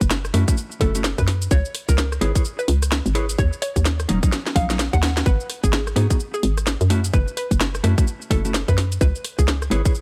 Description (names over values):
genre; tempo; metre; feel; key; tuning
UK garage, two-step garage; 128 BPM; 4/4; swing 60% on 16ths; unclear; A4 = 440 Hz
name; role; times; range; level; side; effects
hollow square pluck; melody; 0.0-9.6 s; G#4 to F#5; -32 LUFS; equal; lush chorus, delay
hollow knocking FM bass; bass; 0.0-9.8 s; D#1 to G#2; -23 LUFS; equal; none
electronic kick drum; drums; 0.0-9.9 s; none; -22 LUFS; equal; studio reverb
garage drum kit; drums; 0.0-10.0 s; cabasa, hi-hat, rim click, snare drum; -27 LUFS; equal; studio reverb
mellow electric guitar; stabs; 0.3-9.9 s; F#3 to C#5; -29 LUFS; equal; delay
room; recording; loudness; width
little or no reverb; vinyl crackle; -20 LUFS; mono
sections
0.0-10.0 A section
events
drum fill 4.3-5.3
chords
0.0 F#m7; 1.5 C#m7; 3.4 D#m7; 5.3 G#7(no3); 6.9 F#m7; 9.0 C#m7